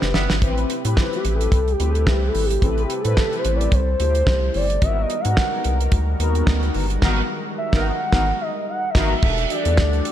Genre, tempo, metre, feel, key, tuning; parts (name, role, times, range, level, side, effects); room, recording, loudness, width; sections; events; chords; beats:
early-eighties boogie funk; 109 BPM; 4/4; swing 56% on 16ths; A4 = 440 Hz
mellow synth brass; accompaniment; 0.0-10.1 s; B3 to C5; -27 LUFS; left 2 dB; chorus, phaser, slapback echo
lush unison pad; sustained chords; 0.0-10.1 s; C3 to F#5; -32 LUFS; left 1 dB; chorus
rubbery square bass; bass; 0.0-10.0 s; E1 to A2; -21 LUFS; equal
damped 70s drum kit; drums; 0.0-10.1 s; crash cymbal, hi-hat, kick drum, snare drum; -22 LUFS; equal
mellow horn section; second line; 0.1-0.3, 7.0-9.1 s; F#3 to B4; -31 LUFS; right 1 dB
gliding portamento lead; melody; 1.0-10.1 s; E4 to G5; -25 LUFS; equal; chorus, tape echo
light reverb, small room ambience; -18 LUFS; side -11 dB against mid
0.4-9.2 A section
drum fill 0.0-0.4; soft synth lead solo 0.4-9.2; band accent 7.0-9.2
0.4 Am9; 4.8 G#m9; 9.2 Em11
| 0.42 0.97 1.52 2.07 | 2.62 3.17 3.72 4.27 | 4.82 5.37 5.92 6.47 | 7.03 7.58 8.13 8.68 | 9.23 9.78